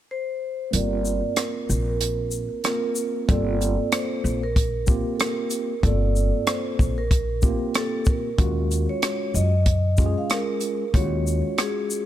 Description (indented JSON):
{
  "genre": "hip hop, jazz-hop",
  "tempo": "94 BPM",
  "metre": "4/4",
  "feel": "swing 58% on 16ths",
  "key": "G minor",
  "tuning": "A4 = 440 Hz",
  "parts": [
    { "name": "vibraphone with medium mallets", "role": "melody", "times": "0.1-12.1 s", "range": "Ab4 to F5", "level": "-28 LUFS", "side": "right 3 dB", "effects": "low-pass filter" },
    { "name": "mellow tine electric piano", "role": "accompaniment", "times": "0.7-12.1 s", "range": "Ab3 to Bb4", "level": "-28 LUFS", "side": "equal", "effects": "medium stereo tremolo, low-pass filter" },
    { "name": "upright bass", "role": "bass", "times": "0.7-11.4 s", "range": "G1 to Gb2", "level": "-24 LUFS", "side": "equal", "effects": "none" },
    { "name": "compact cocktail drum kit", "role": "drums", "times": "0.7-12.1 s", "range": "hi-hat, kick drum, rim click, shaker", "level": "-23 LUFS", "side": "equal", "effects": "none" }
  ],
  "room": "little or no reverb",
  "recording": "none",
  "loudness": "-21 LUFS",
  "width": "side -12 dB against mid",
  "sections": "0.7-3.3 A section; 3.3-12.1 B section",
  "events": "kick muted 0.7-3.3; filter sweep 0.7-3.3",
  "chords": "0.0 N.C.; 0.7 Gm7; 3.3 Gm11; 8.4 Ebm11",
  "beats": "0.09 | 0.73 1.37 2.00 2.64 | 3.28 3.92 4.56 5.20 | 5.83 6.47 7.11 7.75 | 8.39 9.03 9.66 10.30 | 10.94 11.58"
}